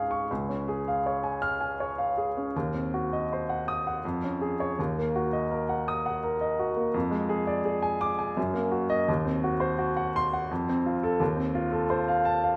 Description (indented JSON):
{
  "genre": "classical, romantic character piece for solo piano",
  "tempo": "68-86 BPM",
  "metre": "3/4",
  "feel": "rubato",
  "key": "Db major",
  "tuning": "A4 = 440 Hz",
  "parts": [
    { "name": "clear baby grand piano", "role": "solo", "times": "0.0-12.6 s", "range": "Db2 to F6", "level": "-28 LUFS", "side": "equal", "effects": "none" }
  ],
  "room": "moderate recital hall reverb, RT60 1.4 s",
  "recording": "none",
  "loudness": "-28 LUFS",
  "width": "mono",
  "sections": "0.3-12.6 A section",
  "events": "none",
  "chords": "0.3 Db; 2.5 Cdim/Eb; 4.0 Db/F; 4.8 Ebm; 6.9 Ddim/F; 8.4 Ebm/Gb; 9.1 Cdim/Eb; 10.5 F; 11.2 F7/Eb"
}